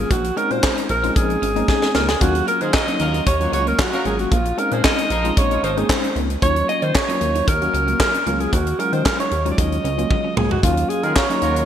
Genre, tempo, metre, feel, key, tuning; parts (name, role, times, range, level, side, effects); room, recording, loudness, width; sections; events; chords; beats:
early-eighties boogie funk; 114 BPM; 4/4; straight; Eb dorian; A4 = 440 Hz
breathy alto saxophone; melody; 0.0-11.7 s; F4 to Eb5; -21 LUFS; right 1 dB
mellow tine electric piano; accompaniment; 0.0-11.7 s; Gb3 to Gb4; -25 LUFS; left 3 dB; medium stereo tremolo
chorused synth bass; bass; 0.0-11.6 s; Ab1 to Eb3; -23 LUFS; equal
semi-hollow electric guitar; riff; 0.1-10.5 s; Bb3 to F4; -31 LUFS; right 5 dB
tight funk drum kit; drums; 0.1-11.7 s; handclaps, hi-hat, kick drum, snare drum, toms; -20 LUFS; equal; gated reverb
clear horn section; second line; 2.6-5.7, 11.0-11.6 s; F3 to Db5; -28 LUFS; equal
moderate lush hall reverb, RT60 2.5 s; bright 1980s-style digital production; -16 LUFS; side -9 dB against mid
0.0-10.6 A section; 10.6-11.7 A section
drum fill 1.7-2.2, 10.1-10.6
0.1 Bbm11; 2.2 Ebm9; 4.3 Bbm11; 6.4 Ebm9; 8.5 Ebm11; 10.6 Ebm9
| 0.11 0.63 1.16 1.69 | 2.21 2.74 3.26 3.79 | 4.32 4.84 5.37 5.90 | 6.42 6.95 7.47 8.00 | 8.53 9.05 9.58 10.11 | 10.63 11.16